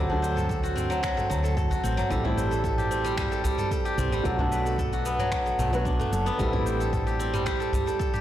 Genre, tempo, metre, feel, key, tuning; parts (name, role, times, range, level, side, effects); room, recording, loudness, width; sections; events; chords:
organic downtempo; 112 BPM; 4/4; straight; A dorian; A4 = 439 Hz
felt-muted upright piano; accompaniment; 0.0-8.2 s; F#3 to B4; -33 LUFS; equal; vintage 12-bit sampler grit, sidechain pumping, low-pass filter, digital delay
steel-string zither; arpeggios; 0.0-8.2 s; F#3 to C5; -27 LUFS; equal; digital delay
woody fretless electric bass; bass; 0.0-7.9 s; F#1 to D2; -30 LUFS; equal; tube saturation, analog chorus
udu; percussion; 0.1-7.8 s; -32 LUFS; equal
organic electronic drum kit; drums; 0.2-8.2 s; finger snaps, shaker, toms; -35 LUFS; right 1 dB; soft clipping on snare
electronic kick drum; drums; 0.5-8.1 s; -32 LUFS; equal
light reverb, digital ambience; blown-out, overdriven recording, overdrive; -24 LUFS; side -12 dB against mid
0.0-8.2 A section
filter sweep on felt piano 0.0-8.2
0.0 D7; 2.1 Am7; 4.2 Bm7; 6.4 Am7